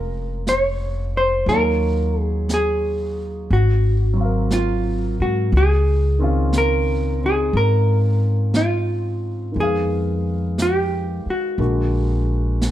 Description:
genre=jazz ballad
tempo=59 BPM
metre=4/4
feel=swing 68% on 8ths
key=Bb minor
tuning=A4 = 440 Hz
part: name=vintage hollow-body jazz guitar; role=melody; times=0.0-12.7 s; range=F4 to Db5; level=-22 LUFS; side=equal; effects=none
part: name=warm upright piano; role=accompaniment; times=0.0-12.7 s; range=D3 to F5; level=-27 LUFS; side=equal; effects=none
part: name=upright bass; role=bass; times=0.0-12.7 s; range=F1 to Ab2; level=-20 LUFS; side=equal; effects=none
part: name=vintage brush drum kit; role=drums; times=0.5-12.7 s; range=brushed snare drum, hi-hat, snare drum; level=-26 LUFS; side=right 1 dB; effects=none
room=little or no reverb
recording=dark, warm production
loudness=-17 LUFS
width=side -12 dB against mid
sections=0.0-12.7 A section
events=none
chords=0.0 Bbm7; 1.5 Ebm9; 3.5 Ab13; 5.5 Dbmaj9; 9.6 Fm7b5; 11.6 Bbaug7

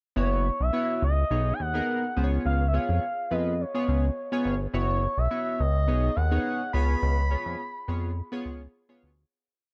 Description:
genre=early-eighties boogie funk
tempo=105 BPM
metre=4/4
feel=straight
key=unclear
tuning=A4 = 439 Hz
part: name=expressive synth lead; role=melody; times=0.2-8.4 s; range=C#5 to B5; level=-32 LUFS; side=equal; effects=chorus
part: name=chorused polysynth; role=accompaniment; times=0.2-9.1 s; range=B3 to C#5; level=-33 LUFS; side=equal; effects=none
part: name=chorused synth bass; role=bass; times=0.2-9.2 s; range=F#1 to E#2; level=-28 LUFS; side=equal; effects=none
room=little or no reverb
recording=dark, warm production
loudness=-27 LUFS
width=mono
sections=0.2-9.3 verse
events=fade-out 7.0-9.3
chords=0.2 F#7sus4; 1.3 B69; 2.2 C#7; 4.7 F#7sus4; 5.9 B69; 6.7 C#7

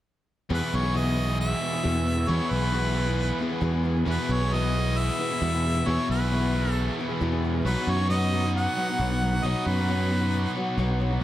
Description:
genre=folk rock and heartland rock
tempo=134 BPM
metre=4/4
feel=straight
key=E major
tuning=A4 = 441 Hz
part: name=clear harmonica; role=melody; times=0.5-10.6 s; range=B4 to F#5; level=-30 LUFS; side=equal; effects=dub echo
part: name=picked steel-string acoustic guitar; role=accompaniment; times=0.5-11.2 s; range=E2 to G#4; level=-31 LUFS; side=left 4 dB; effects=dub echo
part: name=biting overdriven guitar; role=riff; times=0.5-11.2 s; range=E2 to G#4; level=-29 LUFS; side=right 1 dB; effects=spring reverb, dub echo
part: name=picked electric bass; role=bass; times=0.5-11.2 s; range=B1 to F#2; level=-26 LUFS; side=equal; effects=none
room=light reverb, small room ambience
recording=echo-heavy mix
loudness=-23 LUFS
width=side -13 dB against mid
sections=0.5-11.2 A section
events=none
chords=0.5 E; 7.7 B

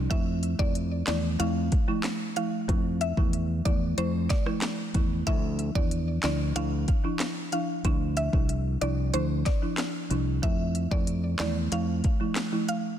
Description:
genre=dancehall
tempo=93 BPM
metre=4/4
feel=straight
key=F major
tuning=A4 = 436 Hz
part: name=fingered electric bass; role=bass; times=0.0-12.0 s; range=C2 to F2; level=-29 LUFS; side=equal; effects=none
part: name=mallet-like synth pluck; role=melody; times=0.1-12.8 s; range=C5 to F5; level=-35 LUFS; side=left 1 dB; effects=chorus, phaser, tape echo
part: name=folk marimba with medium mallets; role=accompaniment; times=0.1-12.7 s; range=F3 to E4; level=-30 LUFS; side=equal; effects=none
part: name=afro-pop drum kit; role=drums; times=0.1-12.8 s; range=handclaps, hi-hat, kick drum, rim click, snare drum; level=-28 LUFS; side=equal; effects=none
room=light reverb, digital ambience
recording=dense, heavily limited modern master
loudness=-25 LUFS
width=side -10 dB against mid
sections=0.0-13.0 A section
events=none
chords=0.1 Fmaj7; 5.3 Dmadd9; 10.4 Fmaj7

